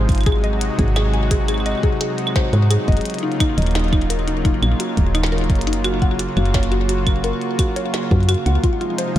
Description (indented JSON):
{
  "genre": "IDM",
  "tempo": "86 BPM",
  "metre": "4/4",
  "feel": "straight",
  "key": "Eb dorian",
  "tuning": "A4 = 439 Hz",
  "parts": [
    { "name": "warm analog pad", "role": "sustained chords", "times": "0.0-9.2 s", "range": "C3 to Gb4", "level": "-23 LUFS", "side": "right 1 dB", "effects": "chorus" },
    { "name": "mallet-like synth pluck", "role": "arpeggios", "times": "0.0-9.2 s", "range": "Eb4 to Ab5", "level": "-25 LUFS", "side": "left 2 dB", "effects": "chorus, ping-pong delay" },
    { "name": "woody FM bass", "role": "bass", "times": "0.0-9.2 s", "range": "Eb1 to Ab2", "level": "-19 LUFS", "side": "equal", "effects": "none" },
    { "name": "electronic kick drum", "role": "drums", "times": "0.1-9.2 s", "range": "none", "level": "-19 LUFS", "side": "equal", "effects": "none" },
    { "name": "glitchy drum kit", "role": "drums", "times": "0.1-9.2 s", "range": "claves, hi-hat, snare drum", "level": "-27 LUFS", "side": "right 1 dB", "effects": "ping-pong delay" }
  ],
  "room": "light reverb",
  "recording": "none",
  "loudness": "-16 LUFS",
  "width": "side -12 dB against mid",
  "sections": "0.0-9.2 A section",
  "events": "none",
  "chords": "0.3 Ab7; 3.1 Ebm9; 5.8 Gbmaj7; 8.6 Fm7"
}